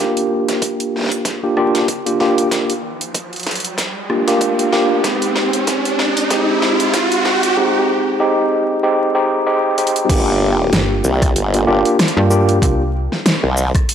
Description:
glitch hop; 95 BPM; 4/4; swing 57% on 16ths; A4 = 440 Hz
tine electric piano; stabs; 0.0-12.8 s; Ab3 to G4; -16 LUFS; equal; medium stereo tremolo, sidechain pumping, tape echo
riser; sound effects; 2.1-7.6 s; -20 LUFS; right 2 dB
dubstep drum kit; drums; 0.2-13.9 s; crash cymbal, hi-hat, rim click, shaker, snare drum; -20 LUFS; equal; overdrive, high-pass filter on hats, high-pass filter on snare, high-pass filter on cymbals, high-pass filter on perc, high-pass filter on room
electronic kick drum; drums; 0.6-13.9 s; -19 LUFS; equal; overdrive, high-pass filter on kick, high-pass filter on room
formant-sweep wobble bass; bass; 10.1-13.7 s; G1 to C2; -16 LUFS; equal; chorus, overdrive
slap-like FM bass; bass; 10.7-13.1 s; G1 to G2; -17 LUFS; equal; tube saturation
moderate lush hall reverb, RT60 2.0 s; dry, gritty hardware recording, transformer saturation, vinyl crackle, high-pass filter; -14 LUFS; side -8 dB against mid
0.0-10.1 A section; 10.1-13.9 B section
build-up 0.0-10.1; drum fill 0.0-7.6, 9.8-10.1; filter sweep 0.0-10.1; riser 2.1-7.6; drop 10.1-13.9
0.0 Bb6; 5.0 Abmaj7; 10.1 Gm7; 12.6 C9sus4
0.62 1.25 1.89 | 2.52 3.15 3.78 4.41 | 5.04 5.67 6.31 6.94 | 7.57 8.20 8.83 9.46 | 10.10 10.73 11.36 11.99 | 12.62 13.25 13.88

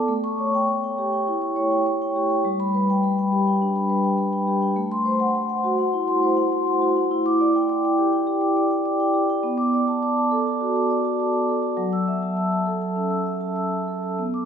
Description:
classical, contemporary piece for solo vibraphone; 102 BPM; 4/4; rubato; A4 = 441 Hz
vibraphone with soft mallets; solo; 0.0-14.5 s; F#3 to E6; -20 LUFS; equal
wet church reverb, RT60 3.5 s; minimal, uncompressed stereo recording; -20 LUFS; side -7 dB against mid
0.0-14.5 A section
0.1 A7; 2.4 G; 4.8 Am6; 7.1 Em7; 9.4 Bm7; 11.8 F#m7
| 0.10 0.69 1.27 1.86 | 2.45 3.03 3.61 4.19 | 4.77 5.35 5.93 6.52 | 7.11 7.69 8.27 8.85 | 9.44 10.02 10.61 11.19 | 11.78 12.37 12.96 13.56 | 14.19

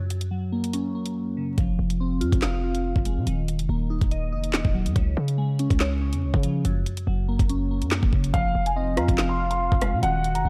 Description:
hip hop, drill; 142 BPM; 4/4; half-time; F phrygian; A4 = 440 Hz
glassy digital keys; accompaniment; 0.0-10.5 s; Gb2 to F5; -30 LUFS; equal; chorus, low-pass filter
drill drum kit; drums; 0.1-10.4 s; handclaps, hi-hat, kick drum, rim click, snare drum; -26 LUFS; equal; overdrive
hard-hitting 808-style bass; bass; 1.6-10.5 s; Eb1 to Db3; -28 LUFS; equal
dark concert grand piano; melody; 8.3-10.4 s; F5 to C6; -30 LUFS; equal; low-pass filter, digital delay
soft octave-layered synth lead; second line; 8.8-10.5 s; Eb5 to Gb5; -31 LUFS; equal; chorus, digital delay
digital ambience; dark, warm production, vinyl crackle; -24 LUFS; mono
0.0-8.3 A section; 8.3-10.5 B section
break 0.0-1.6; silent gap 1.2-1.6
0.0 Gb; 1.6 Fm; 3.3 Ebm; 5.0 Db; 6.6 Gb; 8.3 Fm
0.31 0.73 1.16 | 1.58 2.00 2.42 2.85 | 3.27 3.69 4.11 4.54 | 4.96 5.38 5.80 6.23 | 6.65 7.07 7.49 7.92 | 8.34 8.76 9.18 9.61 | 10.03 10.45

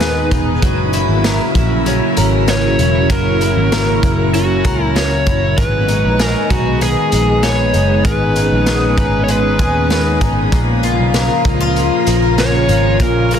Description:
dream pop; 97 BPM; 4/4; straight; G# minor; A4 = 440 Hz
overdriven slide guitar; melody; 0.0-13.4 s; F#4 to C#5; -20 LUFS; equal; digital delay
soft string machine; sustained chords; 0.0-13.4 s; C#3 to E#4; -18 LUFS; right 1 dB; ensemble chorus
picked twelve-string acoustic guitar; arpeggios; 0.0-13.4 s; G#2 to A#4; -19 LUFS; left 3 dB; lush chorus, digital delay
vintage muted picked electric bass; bass; 0.0-13.4 s; E1 to D#2; -17 LUFS; equal
raw garage drum kit; drums; 0.0-13.4 s; hi-hat, kick drum, snare drum; -19 LUFS; equal
light reverb; dense, heavily limited modern master; -12 LUFS; side -8 dB against mid
0.0-13.4 A section
0.0 G#m; 0.6 F#7; 5.6 G#m; 10.5 A#m
0.01 | 0.63 1.24 1.86 2.48 | 3.10 3.72 4.34 4.96 | 5.57 6.19 6.81 7.43 | 8.05 8.67 9.29 9.90 | 10.52 11.14 11.76 12.38 | 13.00

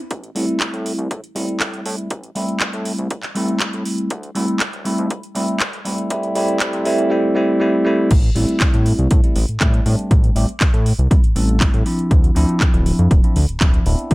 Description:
filtered disco house; 120 BPM; 4/4; straight; A minor; A4 = 440 Hz
fat analog bass; bass; 0.1-14.1 s; D1 to C3; -20 LUFS; equal; sidechain pumping, high-pass filter, low-pass filter
electronic kick drum; drums; 0.1-14.1 s; -16 LUFS; equal; high-pass filter on kick
house drum kit; drums; 0.1-14.1 s; crash cymbal, handclaps, hi-hat; -24 LUFS; right 1 dB; sidechain pumping on hats, sidechain pumping on cymbals
bell-like tine electric piano; accompaniment; 0.3-14.1 s; F3 to A4; -20 LUFS; equal; phaser, sidechain pumping, low-pass filter
light reverb; -15 LUFS; side -20 dB against mid
0.0-8.1 A section; 8.1-14.1 B section
build-up 0.0-8.1; filter sweep 0.0-8.1; drop 8.1-14.1
0.1 Am7; 3.9 D7sus2; 6.1 C; 8.1 Am7; 11.9 Dm9
| 0.11 0.61 1.11 1.61 | 2.11 2.61 3.11 3.61 | 4.11 4.61 5.11 5.61 | 6.11 6.61 7.11 7.61 | 8.11 8.61 9.11 9.61 | 10.11 10.61 11.11 11.61 | 12.11 12.61 13.11 13.61 | 14.11

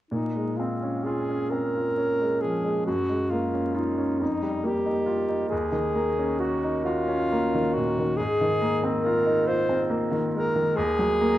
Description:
classical, impressionist duo for alto saxophone and grand piano; 45 BPM (dotted quarters); 6/8; rubato; Bb minor; A4 = 440 Hz
warm alto saxophone; melody; 0.1-11.4 s; Eb4 to C5; -26 LUFS; equal
clear baby grand piano; accompaniment; 0.1-11.4 s; Eb2 to Gb4; -26 LUFS; equal
moderate recital hall reverb, RT60 1.6 s; vinyl crackle; -23 LUFS; side -14 dB against mid
0.1-11.4 A section
0.1 Bbm9; 2.9 Gbmaj9; 4.2 F9sus4; 5.5 Ebm7; 8.2 Ab69; 10.8 Ebm
| 0.11 1.51 | 2.87 4.21 | 5.52 6.85 | 8.17 9.46 | 10.77

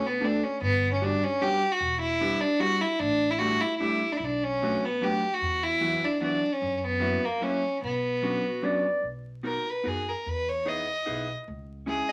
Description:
musette waltz; 149 BPM; 3/4; straight; B minor, B major from 9.0 s; A4 = 439 Hz
rich violin; melody; 0.0-12.1 s; A#3 to D#5; -29 LUFS; equal
vintage hollow-body jazz guitar; accompaniment; 0.0-12.1 s; E3 to A#4; -34 LUFS; equal
upright bass; bass; 0.6-12.0 s; E1 to F#2; -37 LUFS; equal
warm clarinet; second line; 8.4-9.0 s; F#4 to D5; -30 LUFS; equal
moderate club reverb, RT60 0.6 s; vinyl crackle; -27 LUFS; mono
0.0-9.0 A section; 9.0-12.1 B section
0.0 Bm7; 0.6 Gmaj7; 1.8 Em7; 3.0 A7sus4; 4.2 Bm7; 5.4 Esus2; 6.6 F#7; 7.8 Bmadd9; 9.0 Bmaj7; 10.3 Emaj7; 11.5 C#m
0.22 | 0.62 1.02 1.42 | 1.81 2.21 2.61 | 3.01 3.41 3.81 | 4.21 4.62 5.02 | 5.42 5.82 6.22 | 6.62 7.02 7.42 | 7.82 8.22 8.63 | 9.04 9.45 9.85 | 10.26 10.66 11.06 | 11.47 11.87

